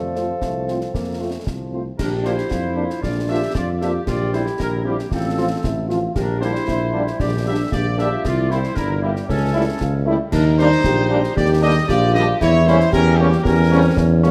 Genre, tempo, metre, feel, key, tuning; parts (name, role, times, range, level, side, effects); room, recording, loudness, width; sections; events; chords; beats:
military-style march for wind band; 115 BPM; 2/4; straight; F major; A4 = 441 Hz
warm euphonium; second line; 0.0-14.3 s; F3 to G4; -26 LUFS; equal
warm woodwind section; second line; 0.0-14.2 s; Bb3 to A4; -29 LUFS; equal
clear trombone section; sustained chords; 0.0-14.3 s; F3 to F4; -31 LUFS; equal
mellow tuba; bass; 0.0-14.3 s; G1 to F2; -22 LUFS; equal
dark trumpet section; melody; 0.2-14.2 s; G4 to E5; -28 LUFS; equal
mellow French horn section; accompaniment; 0.2-14.3 s; F3 to F4; -29 LUFS; equal
concert snare drum, concert bass drum and clash cymbals; drums; 0.2-14.3 s; -30 LUFS; equal
moderate scoring stage reverb, RT60 1.7 s; -19 LUFS; mono
0.0-2.0 A section; 2.0-14.3 B section
0.0 F; 2.0 Bb; 4.1 C7/Bb; 5.1 F/A; 6.2 Gm/Bb; 8.2 C7; 9.3 A7/C#; 10.3 Ebmaj7; 12.4 Edim7
0.42 | 0.94 1.47 | 1.99 2.51 | 3.03 3.55 | 4.08 4.60 | 5.12 5.64 | 6.16 6.68 | 7.21 7.73 | 8.25 8.77 | 9.29 9.81 | 10.33 10.85 | 11.37 11.89 | 12.41 12.93 | 13.45 13.97